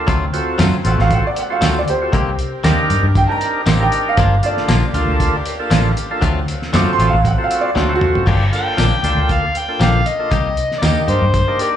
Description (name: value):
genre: straight-eighth soul blues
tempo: 117 BPM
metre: 4/4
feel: swing 54% on 16ths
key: G minor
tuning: A4 = 440 Hz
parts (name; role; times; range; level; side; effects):
- clear upright piano; second line; 0.0-8.2 s; F#4 to D6; -20 LUFS; right 3 dB; plate reverb, slapback echo
- overdriven tonewheel organ; accompaniment; 0.0-11.8 s; Bb3 to Bb4; -22 LUFS; right 2 dB; slow rotary speaker, plate reverb, slapback echo
- clear horn section; sustained chords; 0.0-8.2 s; F#3 to F5; -30 LUFS; left 3 dB; plate reverb
- direct-recorded clean electric guitar; stabs; 0.1-11.3 s; Eb3 to G4; -24 LUFS; left 6 dB; plate reverb, slapback echo, tape echo
- vintage muted fingered electric bass; bass; 0.1-11.4 s; G1 to G2; -16 LUFS; equal; none
- cloth-damped thuddy drum kit; drums; 0.1-11.7 s; crash cymbal, hi-hat, kick drum, snare drum, tambourine, toms; -21 LUFS; equal; slapback echo
- overdriven harmonica; melody; 8.6-11.8 s; G4 to G5; -19 LUFS; left 2 dB; plate reverb, slapback echo
room: light reverb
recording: live gig heard through the venue's PA, club reverb, nothing above 10.3 kHz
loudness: -14 LUFS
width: side -10 dB against mid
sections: 0.0-8.3 A section; 8.3-11.8 B section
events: upright piano solo 0.0-8.3; drum fill 7.8-8.3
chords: 0.1 D7#9; 2.1 Cm7; 4.2 Gm7; 6.2 D7#9; 8.3 Gm7; 10.3 Cm7